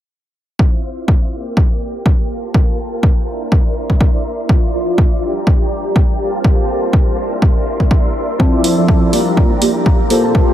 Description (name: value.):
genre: filtered disco house.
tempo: 123 BPM.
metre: 4/4.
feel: swing 55% on 16ths.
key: unclear.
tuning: A4 = 441 Hz.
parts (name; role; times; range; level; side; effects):
string machine, full ensemble; sustained chords; 0.6-10.5 s; F3 to D6; -20 LUFS; equal; ensemble chorus, sidechain pumping, low-pass filter.
electronic kick drum; drums; 0.6-10.5 s; none; -12 LUFS; equal; none.
mellow synth brass; accompaniment; 8.4-10.5 s; F3 to D5; -15 LUFS; equal; chorus, phaser, sidechain pumping, low-pass filter.
direct-recorded clean electric guitar; riff; 8.4-10.5 s; F3 to Bb4; -21 LUFS; left 1 dB; analog chorus, sidechain pumping, low-pass filter.
electronic hi-hat; drums; 8.6-10.2 s; none; -22 LUFS; right 2 dB; sidechain pumping on hats.
room: light reverb.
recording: none.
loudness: -12 LUFS.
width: side -12 dB against mid.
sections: 0.6-10.5 A section.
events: filter sweep 0.6-10.5.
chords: 0.6 Dm9; 1.3 Bb6; 2.3 Gm11; 3.3 C9; 4.5 Dm9; 5.2 Bb6; 6.2 Gm11; 7.2 C9; 8.4 Dm9; 9.1 Bb6.